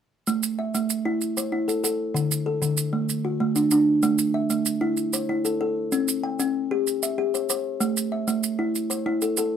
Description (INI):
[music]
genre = southern african traditional, mbira-style interlocking cycle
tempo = 128 BPM (dotted quarters)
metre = 12/8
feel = straight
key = A equiheptatonic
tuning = A4 = 441 Hz
[part]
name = kalimba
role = arpeggios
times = 0.3-9.6 s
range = D3 to G5+29c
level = -22 LUFS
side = equal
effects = none
[part]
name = maracas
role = percussion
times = 0.3-9.5 s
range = none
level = -28 LUFS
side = right 5 dB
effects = none
[sound]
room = moderate studio reverb, RT60 0.6 s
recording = close, detailed microphones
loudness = -22 LUFS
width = side -8 dB against mid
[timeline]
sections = 0.3-9.6 A section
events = none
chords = 0.3 Am; 2.2 D; 4.0 Am; 5.9 C; 7.8 Am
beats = | 0.27 0.74 1.21 1.68 | 2.15 2.62 3.10 3.56 | 4.04 4.51 4.98 5.45 | 5.92 6.39 6.86 7.33 | 7.80 8.28 8.75 9.22